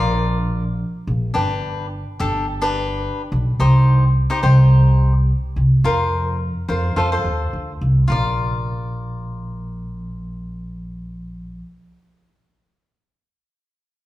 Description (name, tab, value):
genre	calypso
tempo	107 BPM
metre	4/4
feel	swing 54% on 16ths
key	Bb major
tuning	A4 = 440 Hz
part	cavaquinho	accompaniment	0.0-11.6 s	D4 to D5	-23 LUFS	left 2 dB	none
part	upright bass	bass	0.0-11.6 s	G1 to F2	-18 LUFS	equal	none
room	wet large studio reverb, RT60 1.5 s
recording	band playing live in one room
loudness	-16 LUFS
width	side -16 dB against mid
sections	0.0-8.1 A section; 8.1-10.4 B section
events	none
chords	0.0 Bb; 1.4 G; 3.6 Cm; 5.8 Fsus4; 7.0 F; 8.1 Bb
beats	0.23 0.79 | 1.35 1.92 2.48 3.04 | 3.60 4.16 4.72 5.29 | 5.85 6.41 6.98 7.54 | 8.10 8.67 9.23 9.79